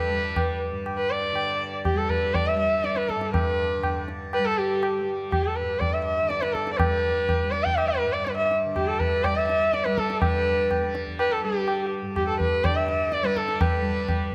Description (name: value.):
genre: indian classical, Hindustani.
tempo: 122 BPM.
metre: 7/4.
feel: straight.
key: G raga bhupali.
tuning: A4 = 438 Hz.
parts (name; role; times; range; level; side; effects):
warm sarangi; melody; 0.0-14.3 s; G4 to G5; -26 LUFS; equal; none.
tanpura; drone; 0.0-14.3 s; G2 to G3; -35 LUFS; equal; none.
tabla; percussion; 0.4-14.3 s; none; -30 LUFS; equal; none.
room: moderate concert hall reverb, RT60 2.5 s.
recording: close, detailed microphones.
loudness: -25 LUFS.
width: mono.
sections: 0.0-10.2 A section; 10.2-14.3 B section.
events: speeding up 0.0-14.3.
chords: none.